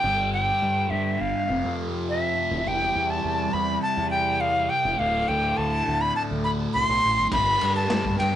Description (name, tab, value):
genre	psychedelic rock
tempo	103 BPM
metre	4/4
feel	straight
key	D dorian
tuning	A4 = 440 Hz
part	breathy bright jazz flute	melody	0.0-8.4 s	E5 to C6	-23 LUFS	equal	analog delay
part	thick fuzz guitar	riff	0.0-8.4 s	D2 to C4	-28 LUFS	equal	distortion, phaser
part	growling fingered electric bass	bass	0.0-8.3 s	D1 to G2	-30 LUFS	equal	overdrive
part	crunchy breakbeat drum kit	drums	7.3-8.3 s	kick drum, ride cymbal, snare drum	-27 LUFS	equal	none
room	moderate small room reverb, RT60 0.6 s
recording	rough rehearsal-room recording, nothing above 10.8 kHz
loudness	-21 LUFS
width	side -11 dB against mid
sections	0.0-8.4 A section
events	none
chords	0.0 G5; 1.5 F5; 2.7 C/E; 5.0 D5; 7.3 G5